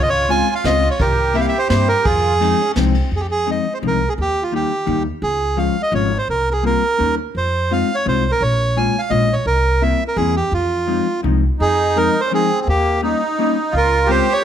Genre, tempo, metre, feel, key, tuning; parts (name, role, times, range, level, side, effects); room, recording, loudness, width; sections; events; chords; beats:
musette waltz; 170 BPM; 3/4; straight; F minor; A4 = 440 Hz
bandoneon; melody; 0.0-14.4 s; F4 to Ab5; -18 LUFS; right 3 dB
accordion; second line; 0.0-3.1, 11.6-14.4 s; Bb3 to G4; -23 LUFS; right 2 dB; light tremolo tuning
upright bass; bass; 0.0-14.2 s; Ab1 to G2; -20 LUFS; equal
vintage hollow-body jazz guitar; accompaniment; 0.3-14.3 s; Eb3 to F4; -22 LUFS; left 6 dB
jazz brush drum kit; drums; 0.3-3.0 s; kick drum, ride cymbal, snare drum; -25 LUFS; equal
light reverb; close, detailed microphones; -15 LUFS; side -9 dB against mid
0.0-3.1 A section; 3.1-11.6 A section; 11.6-14.4 B section
0.0 Dbmaj7; 1.0 C7; 2.1 Fm7; 4.2 Eb; 5.2 Db; 6.3 C7sus4; 7.0 Eb7; 7.3 Fm7; 8.4 Bbm7; 9.5 C7; 10.5 Fm7; 12.7 Eb7; 13.7 Dbmaj7
0.30 0.65 | 1.00 1.35 1.70 | 2.05 2.40 2.76 | 3.12 3.48 3.83 | 4.18 4.53 4.88 | 5.22 5.57 5.93 | 6.28 6.63 6.99 | 7.35 7.71 8.06 | 8.41 8.77 9.12 | 9.47 9.82 10.17 | 10.52 10.88 11.24 | 11.60 11.96 12.32 | 12.67 13.02 13.38 | 13.72 14.08 14.43